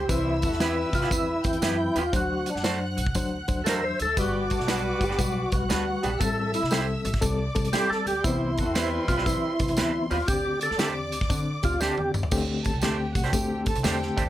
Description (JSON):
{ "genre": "uptempo 1960s-style soul", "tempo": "118 BPM", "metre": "4/4", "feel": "swing 66% on 8ths", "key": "unclear", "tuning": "A4 = 441 Hz", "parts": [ { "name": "percussive tonewheel organ", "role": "melody", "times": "0.0-12.1 s", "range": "D4 to C5", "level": "-27 LUFS", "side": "equal", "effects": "overdrive, chorus vibrato, slow rotary speaker" }, { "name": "warm symphonic violin section", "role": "second line", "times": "0.0-14.2 s", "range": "C4 to G6", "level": "-35 LUFS", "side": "equal", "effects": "none" }, { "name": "upright bass", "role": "bass", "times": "0.0-14.3 s", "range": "G1 to D3", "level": "-32 LUFS", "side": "equal", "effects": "none" }, { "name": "warm horn section", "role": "second line", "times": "0.1-9.6, 13.3-14.3 s", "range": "D3 to D5", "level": "-34 LUFS", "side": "right 1 dB", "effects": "none" }, { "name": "reed electric piano", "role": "accompaniment", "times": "0.1-14.2 s", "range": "D3 to C5", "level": "-30 LUFS", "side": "left 3 dB", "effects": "fast tremolo" }, { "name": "natural country drum kit", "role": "drums", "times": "0.1-14.3 s", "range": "crash cymbal, hi-hat, kick drum, snare drum, toms", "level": "-28 LUFS", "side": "equal", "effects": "none" }, { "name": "tambourine", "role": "percussion", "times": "0.1-14.3 s", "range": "none", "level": "-38 LUFS", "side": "right 3 dB", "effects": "none" }, { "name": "electric guitar through a small old amp", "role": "stabs", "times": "0.6-14.2 s", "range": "G3 to C5", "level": "-31 LUFS", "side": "right 5 dB", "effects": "none" } ], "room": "light reverb", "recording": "none", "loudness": "-23 LUFS", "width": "side -13 dB against mid", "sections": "0.0-12.3 A section; 12.3-14.3 B section", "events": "tonewheel organ solo 0.0-12.3; drum fill 11.8-12.3", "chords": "0.1 Cmaj7; 2.1 D7; 4.2 Gmaj7; 6.2 Am7; 8.2 Cmaj7; 10.3 D7sus4" }